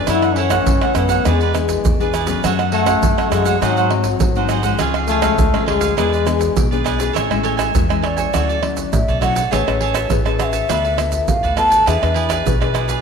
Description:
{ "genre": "samba and choro", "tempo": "102 BPM", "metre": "4/4", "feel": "straight", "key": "F# minor, A major from 7.2 s", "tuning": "A4 = 437 Hz", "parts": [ { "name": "cavaquinho", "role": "accompaniment", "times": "0.0-13.0 s", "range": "E4 to A5", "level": "-22 LUFS", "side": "right 9 dB", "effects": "none" }, { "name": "nylon-string guitar", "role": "accompaniment", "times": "0.0-13.0 s", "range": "F#2 to B4", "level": "-23 LUFS", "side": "left 8 dB", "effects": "none" }, { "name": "warm trombone", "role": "second line", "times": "0.1-6.8 s", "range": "F#3 to E4", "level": "-20 LUFS", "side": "left 6 dB", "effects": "none" }, { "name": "upright bass", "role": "bass", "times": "0.1-13.0 s", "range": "A1 to G#2", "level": "-22 LUFS", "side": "equal", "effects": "none" }, { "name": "egg shaker, surdo, pandeiro and tamborim", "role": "percussion", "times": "0.1-13.0 s", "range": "none", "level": "-21 LUFS", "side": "right 3 dB", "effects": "none" }, { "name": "mellow hollow wooden flute", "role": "melody", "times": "8.0-12.5 s", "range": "C#5 to A5", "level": "-19 LUFS", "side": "equal", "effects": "none" } ], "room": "wet echo chamber reverb, RT60 2.0 s, studio ambience", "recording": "1960s-style stereo with parts hard left and right", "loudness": "-14 LUFS", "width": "side -6 dB against mid", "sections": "0.0-7.2 A section; 7.2-13.0 B section", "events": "trombone solo 0.0-7.2; flute solo 7.2-13.0", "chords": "0.1 F#m7; 1.3 E7; 2.4 F#m; 3.6 G#7; 4.8 C#; 6.0 E7; 7.2 Amaj7; 8.3 Dmaj9; 9.5 Amaj9; 10.7 Dm6; 11.9 E7" }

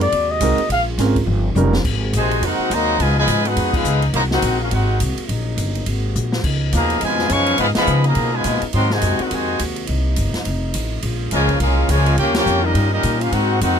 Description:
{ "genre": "jazz, big band swing", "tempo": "209 BPM", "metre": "4/4", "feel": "swing 61% on 8ths", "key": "Ab major", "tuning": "A4 = 441 Hz", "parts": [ { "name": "trumpet with bucket mute", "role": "melody", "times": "0.0-0.8 s", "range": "D5 to F5", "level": "-18 LUFS", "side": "left 2 dB", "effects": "none" }, { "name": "mellow trombone section", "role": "sustained chords", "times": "0.0-13.8 s", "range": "C3 to Gb4", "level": "-28 LUFS", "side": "equal", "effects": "none" }, { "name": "upright bass", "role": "bass", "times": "0.0-13.8 s", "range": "F1 to Db3", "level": "-20 LUFS", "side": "equal", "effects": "none" }, { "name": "swinging big-band drum kit", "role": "drums", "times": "0.0-13.7 s", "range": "crash cymbal, hi-hat, kick drum, ride cymbal, snare drum, toms", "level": "-26 LUFS", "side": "equal", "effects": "none" }, { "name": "warm grand piano", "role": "accompaniment", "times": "0.4-1.7 s", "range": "G3 to Bb4", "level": "-20 LUFS", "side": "right 4 dB", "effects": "none" }, { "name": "clear trumpet section", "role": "melody", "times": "2.2-13.8 s", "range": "Db4 to Db6", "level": "-20 LUFS", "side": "equal", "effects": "none" }, { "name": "brilliant trombone section", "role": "second line", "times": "2.2-13.8 s", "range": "Cb3 to G4", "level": "-22 LUFS", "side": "left 2 dB", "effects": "none" } ], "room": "little or no reverb", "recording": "close, detailed microphones", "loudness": "-16 LUFS", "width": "side -8 dB against mid", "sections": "0.0-1.9 A section; 1.9-13.8 B section", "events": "muted trumpet solo 0.0-1.9; drum fill 1.3-1.9, 6.2; band accent 3.7, 7.7, 12.3", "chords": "0.0 Ab9; 0.7 Bbm7; 1.3 Eb9; 1.9 Ab9; 3.0 Db9; 4.1 Ab9; 5.3 Ebm7; 5.9 Ab9; 6.4 Db9; 8.7 Ab9; 9.9 Cm7; 10.5 F7; 11.0 Bbm7; 12.2 Eb9" }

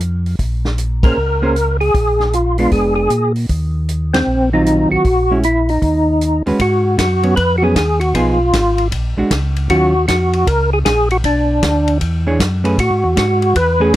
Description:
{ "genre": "soul jazz organ trio", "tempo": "155 BPM", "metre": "4/4", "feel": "swing 65% on 8ths", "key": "Eb dorian, G# dorian from 6.6 s", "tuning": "A4 = 440 Hz", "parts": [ { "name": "mellow tonewheel organ", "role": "bass", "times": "0.0-14.0 s", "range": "F1 to Bb2", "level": "-17 LUFS", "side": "equal", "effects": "slow rotary speaker" }, { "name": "vintage drum kit", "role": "drums", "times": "0.0-14.0 s", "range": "hi-hat, kick drum, ride cymbal, snare drum", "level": "-20 LUFS", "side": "equal", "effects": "none" }, { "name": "percussive tonewheel organ", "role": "melody", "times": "1.0-13.9 s", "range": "C4 to B4", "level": "-15 LUFS", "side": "equal", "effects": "slow rotary speaker, chorus vibrato" }, { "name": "hollow-body jazz guitar", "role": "accompaniment", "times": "1.0-9.9, 12.3-13.9 s", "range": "Eb3 to C#5", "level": "-16 LUFS", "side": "right 1 dB", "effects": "none" } ], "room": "little or no reverb", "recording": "dry, close 1970s-style studio recording", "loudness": "-13 LUFS", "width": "side -14 dB against mid", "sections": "0.0-6.6 A section; 6.6-14.0 B section", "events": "band accent 1.0, 4.1", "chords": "0.4 Bbm9; 1.9 Bb7b9; 3.5 Ebm69; 5.0 Bbm7b5; 5.8 Ebmadd11; 6.6 G#m7; 8.1 Fm7b5; 8.9 A#7alt; 9.7 D#m9; 11.2 Bm; 12.0 E13; 12.8 Amaj7sus2" }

